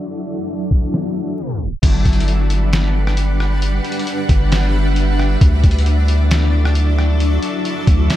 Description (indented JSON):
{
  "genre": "hip hop, atmospheric cloud-rap",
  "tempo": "134 BPM",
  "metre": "4/4",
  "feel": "half-time",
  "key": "G major",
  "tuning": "A4 = 440 Hz",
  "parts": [
    { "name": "granular cloud pad", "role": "sustained chords", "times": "0.0-8.2 s", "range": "F#3 to F#5", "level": "-21 LUFS", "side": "left 1 dB", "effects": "built-in reverb, sidechain pumping" },
    { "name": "trip hop sampler-style drum kit", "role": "drums", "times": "0.0-8.2 s", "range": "crash cymbal, hi-hat, kick drum, rim click, snare drum", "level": "-17 LUFS", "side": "equal", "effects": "none" },
    { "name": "wind-like tuned noise texture", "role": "texture", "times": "0.0-8.2 s", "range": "F#4 to D6", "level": "-34 LUFS", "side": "equal", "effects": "built-in reverb" },
    { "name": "long sustained 808-style bass", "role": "bass", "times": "1.8-8.1 s", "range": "G1 to D2", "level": "-15 LUFS", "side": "equal", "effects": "none" }
  ],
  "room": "little or no reverb",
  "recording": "low-pass filter, tape stop",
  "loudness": "-14 LUFS",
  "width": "side -13 dB against mid",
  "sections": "0.0-1.8 A section; 1.8-8.2 B section",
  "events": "filter sweep 0.0-1.8; tape stop 1.4-1.8",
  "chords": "0.0 Dadd9; 1.8 Gmaj7; 5.4 Dadd9"
}